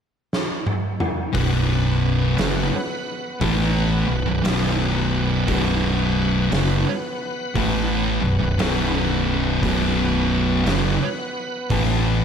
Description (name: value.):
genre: stoner and doom metal.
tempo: 58 BPM.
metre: 4/4.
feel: swing 64% on 8ths.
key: unclear.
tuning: A4 = 441 Hz.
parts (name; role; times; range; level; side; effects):
oversized low-tuned drum kit; drums; 0.3-12.0 s; hi-hat, kick drum, snare drum, toms; -27 LUFS; right 1 dB; none.
bright tonewheel organ; sustained chords; 1.3-12.2 s; B3 to F#5; -30 LUFS; equal; slow rotary speaker, overdrive, chorus vibrato.
thick fuzz guitar; riff; 1.3-12.2 s; B1 to A3; -23 LUFS; left 9 dB; distortion.
thick fuzz guitar; riff; 1.3-12.2 s; B1 to A3; -23 LUFS; right 8 dB; distortion.
growling picked electric bass; bass; 1.3-12.2 s; B0 to A1; -25 LUFS; equal; overdrive.
room: little or no reverb.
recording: none.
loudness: -19 LUFS.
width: side -7 dB against mid.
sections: 0.0-1.3 A section; 1.3-12.2 B section.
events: drum fill 0.3-1.3.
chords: 0.0 N.C.; 1.3 B5.